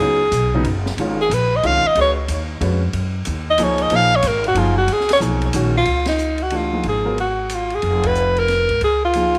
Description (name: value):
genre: modal jazz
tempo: 184 BPM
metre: 3/4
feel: swing 64% on 8ths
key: Db mixolydian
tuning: A4 = 443 Hz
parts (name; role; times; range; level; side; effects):
- breathy alto saxophone; melody; 0.0-9.4 s; Eb4 to F5; -20 LUFS; equal; tape echo
- warm grand piano; accompaniment; 0.0-9.3 s; Db3 to Cb5; -25 LUFS; equal; none
- upright bass; bass; 0.0-9.4 s; F1 to Ab2; -24 LUFS; equal; none
- open jazz drum kit; drums; 0.3-9.4 s; hi-hat, kick drum, ride cymbal, snare drum; -32 LUFS; equal; none
room: light reverb, small room reverb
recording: none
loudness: -18 LUFS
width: mono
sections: 0.0-5.9 A section; 5.9-9.4 B section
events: alto saxophone solo 0.0-5.9; band accent 6.0, 8.0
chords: 0.0 Db7; 2.0 Gb/Db; 5.9 Db